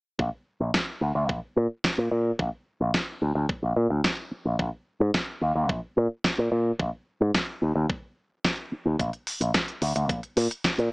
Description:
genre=nu-disco, nu disco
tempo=109 BPM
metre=4/4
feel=straight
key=Bb mixolydian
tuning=A4 = 440 Hz
part: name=picked electric bass with an envelope filter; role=bass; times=0.2-10.9 s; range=Bb1 to Bb2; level=-24 LUFS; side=equal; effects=none
part: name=electronic kick drum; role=drums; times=0.2-10.8 s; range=none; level=-30 LUFS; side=equal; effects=studio reverb
part: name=pop drum kit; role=drums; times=0.7-10.9 s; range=hi-hat, snare drum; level=-26 LUFS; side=equal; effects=studio reverb
room=digital ambience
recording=small speaker sound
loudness=-24 LUFS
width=side -31 dB against mid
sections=0.2-10.9 A section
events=none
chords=none

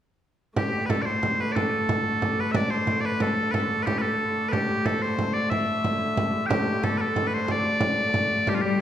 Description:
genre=medieval dance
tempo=121 BPM (dotted quarters)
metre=6/8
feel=straight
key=unclear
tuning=A4 = 439 Hz
part: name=loud bright bagpipes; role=melody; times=0.6-8.8 s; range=F4 to G5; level=-25 LUFS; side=equal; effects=none
part: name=rich hurdy-gurdy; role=drone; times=0.6-8.8 s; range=D3 to A3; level=-29 LUFS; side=left 1 dB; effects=none
part: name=frame drum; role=percussion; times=0.6-8.6 s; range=none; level=-28 LUFS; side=right 1 dB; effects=none
part: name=warm viola da gamba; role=second line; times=8.5-8.8 s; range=G3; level=-24 LUFS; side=left 5 dB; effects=none
room=wet recital hall reverb, RT60 1.6 s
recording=recorded in a church or concert hall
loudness=-22 LUFS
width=side -10 dB against mid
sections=0.6-8.5 A section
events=none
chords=none

